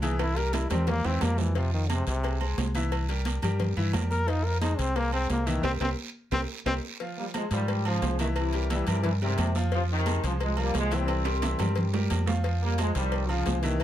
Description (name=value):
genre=latin, salsa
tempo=176 BPM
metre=4/4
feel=straight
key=F minor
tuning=A4 = 441 Hz
part: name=bright trombone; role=melody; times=0.0-6.7 s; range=C3 to Bb4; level=-30 LUFS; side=left 1 dB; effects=none
part: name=bright upright piano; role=accompaniment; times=0.0-13.8 s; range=E3 to F5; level=-34 LUFS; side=left 1 dB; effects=none
part: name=deep dub fingered electric bass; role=bass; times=0.0-13.8 s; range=C2 to Ab2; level=-28 LUFS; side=equal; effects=none
part: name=agogo bells and timbales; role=percussion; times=0.0-13.8 s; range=none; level=-36 LUFS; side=right 6 dB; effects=none
part: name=congas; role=percussion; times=0.0-13.8 s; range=none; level=-36 LUFS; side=right 1 dB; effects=none
part: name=cowbell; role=percussion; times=0.0-13.8 s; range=none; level=-39 LUFS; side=left 8 dB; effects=none
part: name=guiro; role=percussion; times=0.0-13.8 s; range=none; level=-42 LUFS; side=right 7 dB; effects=none
part: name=mellow trombone section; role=melody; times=7.2-13.8 s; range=Ab2 to C4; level=-31 LUFS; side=left 1 dB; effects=none
room=light reverb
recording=none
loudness=-25 LUFS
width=side -12 dB against mid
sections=0.0-7.0 A section; 7.0-13.8 B section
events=trombone solo 0.0-7.0; drum fill 0.2-1.6, 6.2-7.0, 11.1-12.4; band accent 5.6-7.0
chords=0.2 C7; 1.6 Fm; 2.9 C7; 4.3 Fm; 5.6 C5; 7.0 Fm7; 8.4 C7; 9.7 Fm7; 11.1 C7; 12.4 Fm7